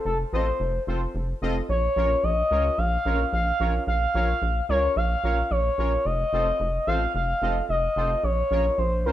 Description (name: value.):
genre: synth-pop.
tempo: 110 BPM.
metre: 4/4.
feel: straight.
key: Bb harmonic minor.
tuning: A4 = 440 Hz.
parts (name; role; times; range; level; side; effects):
expressive portamento lead; melody; 0.0-9.1 s; A4 to F5; -24 LUFS; equal; chorus, plate reverb, ping-pong delay.
rubbery square bass; bass; 0.1-9.1 s; F1 to Db2; -26 LUFS; equal; none.
analog synth brass; accompaniment; 0.3-9.1 s; C4 to Eb5; -32 LUFS; equal; chorus, plate reverb.
room: moderate studio reverb, RT60 0.6 s.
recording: rough home demo mix.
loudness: -22 LUFS.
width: side -12 dB against mid.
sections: 0.0-9.1 A section.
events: none.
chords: 0.0 F; 1.7 Bbm; 6.1 F; 8.2 Bbm.